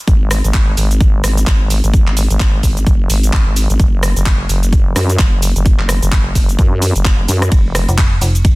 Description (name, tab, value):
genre	bass house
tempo	129 BPM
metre	4/4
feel	swing 59% on 16ths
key	unclear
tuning	A4 = 440 Hz
part	vowel-sweep wobble bass	bass	0.1-7.9 s	F1 to Gb2	-14 LUFS	equal	chorus, sidechain pumping
part	electronic kick drum	drums	0.1-8.6 s	none	-12 LUFS	equal	none
part	house drum kit	drums	0.1-8.6 s	cabasa, handclaps, hi-hat, ride cymbal, rim click	-20 LUFS	equal	soft clipping on snare
part	metallic FM bass	bass	7.9-8.6 s	F1	-14 LUFS	equal	sidechain pumping
room	little or no reverb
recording	dense, heavily limited modern master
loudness	-11 LUFS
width	side -22 dB against mid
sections	0.0-8.6 A section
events	none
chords	none